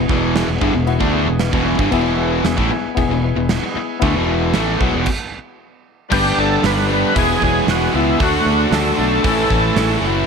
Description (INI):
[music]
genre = classic rock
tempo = 115 BPM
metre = 4/4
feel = straight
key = E mixolydian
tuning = A4 = 442 Hz
[part]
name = reed electric piano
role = accompaniment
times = 0.0-10.3 s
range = A3 to D5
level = -24 LUFS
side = left 13 dB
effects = spring reverb
[part]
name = tonewheel organ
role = sustained chords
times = 0.0-10.3 s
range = E3 to B4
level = -31 LUFS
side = equal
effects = none
[part]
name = crunchy overdriven guitar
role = riff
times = 0.0-10.3 s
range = E2 to G#4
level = -22 LUFS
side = right 13 dB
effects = none
[part]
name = crunchy overdriven guitar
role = riff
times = 0.0-10.3 s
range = E2 to D4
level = -24 LUFS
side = equal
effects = none
[part]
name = tight distorted guitar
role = riff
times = 0.0-10.3 s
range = E2 to F#4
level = -23 LUFS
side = left 13 dB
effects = distortion
[part]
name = modern bright fingered electric bass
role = bass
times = 0.0-10.2 s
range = E1 to D2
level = -22 LUFS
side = equal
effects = none
[part]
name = gated 80s drum kit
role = drums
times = 0.1-9.9 s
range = crash cymbal, hi-hat, kick drum, snare drum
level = -22 LUFS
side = right 2 dB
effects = none
[part]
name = overdriven tonewheel organ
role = melody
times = 6.1-10.0 s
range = E4 to B4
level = -19 LUFS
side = equal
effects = chorus vibrato, slow rotary speaker, slapback echo
[sound]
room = light reverb, small room ambience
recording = 1960s-style stereo with parts hard left and right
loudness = -14 LUFS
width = side -6 dB against mid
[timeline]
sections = 0.0-6.1 A section; 6.1-10.3 B section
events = stop 5.1-6.1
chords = 0.0 E; 6.1 G; 7.2 E; 8.2 D; 9.2 A